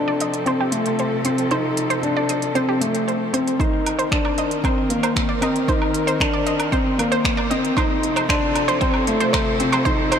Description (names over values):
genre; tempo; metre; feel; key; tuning
piano and strings electronica; 115 BPM; 4/4; straight; unclear; A4 = 440 Hz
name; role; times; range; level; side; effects
muted studio string section; sustained chords; 0.0-10.2 s; C3 to Bb4; -26 LUFS; left 1 dB; sidechain pumping
felt-muted upright piano; riff; 0.0-10.2 s; A3 to Eb4; -21 LUFS; left 1 dB; ping-pong delay
wide unison pluck; arpeggios; 0.1-10.2 s; G4 to Eb5; -24 LUFS; right 2 dB; sidechain pumping, ping-pong delay
organic electronic drum kit; drums; 0.2-10.2 s; finger snaps, hi-hat, woodblock; -26 LUFS; right 1 dB; none
electronic kick drum; drums; 3.6-10.0 s; none; -24 LUFS; equal; overdrive
room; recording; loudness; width
moderate huge ambient reverb, RT60 4.0 s; none; -18 LUFS; side -8 dB against mid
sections
0.0-10.2 A section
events
build-up 0.0-10.2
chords
0.0 F/C; 3.6 Cm7; 7.8 F/C